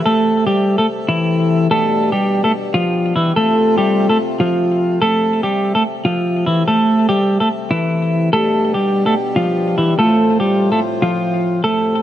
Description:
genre	hip hop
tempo	145 BPM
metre	4/4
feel	half-time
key	A minor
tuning	A4 = 442 Hz
part	hand-pumped harmonium	sustained chords	0.0-12.0 s	A2 to E5	-22 LUFS	left 2 dB	none
part	clean electric guitar	melody	0.1-12.0 s	E3 to A4	-14 LUFS	equal	ping-pong delay
room	light reverb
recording	none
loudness	-13 LUFS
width	side -12 dB against mid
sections	0.0-11.6 A section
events	none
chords	0.0 Am; 1.7 G; 3.4 F; 5.0 Am; 8.3 G; 10.0 F/A

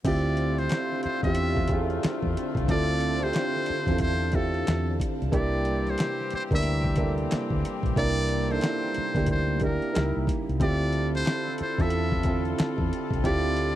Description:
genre	R&B, neo-soul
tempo	91 BPM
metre	4/4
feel	swing 61% on 16ths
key	unclear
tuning	A4 = 441 Hz
part	warm upright piano	accompaniment	0.0-13.8 s	Bb3 to Bb4	-29 LUFS	right 3 dB	none
part	string machine, violins	sustained chords	0.0-13.8 s	C3 to A4	-35 LUFS	left 1 dB	ensemble chorus
part	mellow horn section	stabs	0.0-13.8 s	C3 to A#4	-36 LUFS	left 5 dB	none
part	dusty soul sampler-style drum kit	drums	0.0-13.8 s	crash cymbal, handclaps, hi-hat, kick drum, snare drum	-29 LUFS	left 1 dB	overdrive
part	trumpet with metal mute	melody	0.1-13.8 s	A4 to E5	-31 LUFS	left 1 dB	slapback echo
part	vintage muted fingered electric bass	bass	0.1-13.8 s	Bb1 to E2	-28 LUFS	equal	none
room	little or no reverb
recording	dry, close 1970s-style studio recording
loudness	-24 LUFS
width	side -13 dB against mid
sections	0.0-13.8 A section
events	none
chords	0.0 Dm11; 5.3 C7; 9.9 C#dim7; 10.6 Dm11

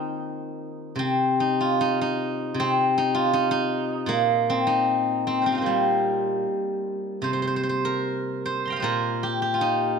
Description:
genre	chinese traditional, Chinese solo plucked strings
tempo	76 BPM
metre	2/4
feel	rubato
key	unclear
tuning	A4 = 439 Hz
part	steel-string zither	solo	0.0-10.0 s	Bb2 to C6	-22 LUFS	equal	none
room	light reverb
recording	close, detailed microphones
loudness	-22 LUFS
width	side -6 dB against mid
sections	0.0-7.3 A section; 7.3-10.0 B section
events	none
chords	none

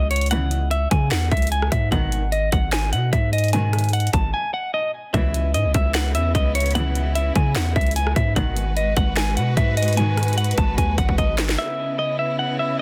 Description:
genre	hip hop, trap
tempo	149 BPM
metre	4/4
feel	half-time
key	unclear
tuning	A4 = 441 Hz
part	clean electric guitar	melody	0.0-12.8 s	C#5 to A5	-27 LUFS	equal	low-pass filter, tape echo
part	long sustained 808-style bass	bass	0.0-11.6 s	G#1 to C#3	-24 LUFS	equal	none
part	trap drum kit	drums	0.1-11.6 s	finger snaps, hi-hat, kick drum, rim click, snare drum	-25 LUFS	equal	none
part	dark studio string section	stabs	0.3-10.1 s	G#2 to E3	-31 LUFS	equal	tape echo
part	clear studio string section	sustained chords	5.1-12.8 s	C#3 to B4	-32 LUFS	equal	none
room	little or no reverb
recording	dense, heavily limited modern master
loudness	-21 LUFS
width	mono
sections	0.0-11.6 A section; 11.6-12.8 A section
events	break 4.3-5.1; drum fill 10.8-11.6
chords	0.0 C#m; 1.9 G#m7; 5.1 C#m7; 8.4 G#m7; 11.6 C#m7

